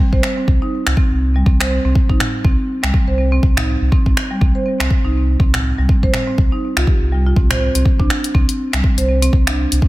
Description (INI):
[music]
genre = afro house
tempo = 122 BPM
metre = 4/4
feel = swing 57% on 16ths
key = C minor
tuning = A4 = 441 Hz
[part]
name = marimba with medium mallets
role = arpeggios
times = 0.0-9.9 s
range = G3 to C5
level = -20 LUFS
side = right 1 dB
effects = sidechain pumping, ping-pong delay
[part]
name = warm sub bass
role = bass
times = 0.1-9.8 s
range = Bb1 to C2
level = -17 LUFS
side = equal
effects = sidechain pumping
[part]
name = electronic kick drum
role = drums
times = 0.1-9.9 s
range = none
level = -15 LUFS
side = equal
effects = small room ambience
[part]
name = afro-pop drum kit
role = drums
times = 0.2-9.8 s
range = finger snaps, hi-hat, toms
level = -22 LUFS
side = equal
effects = soft clipping on snare, small room ambience
[sound]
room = digital ambience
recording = dense, heavily limited modern master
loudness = -13 LUFS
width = side -18 dB against mid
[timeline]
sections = 0.0-9.9 A section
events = none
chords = none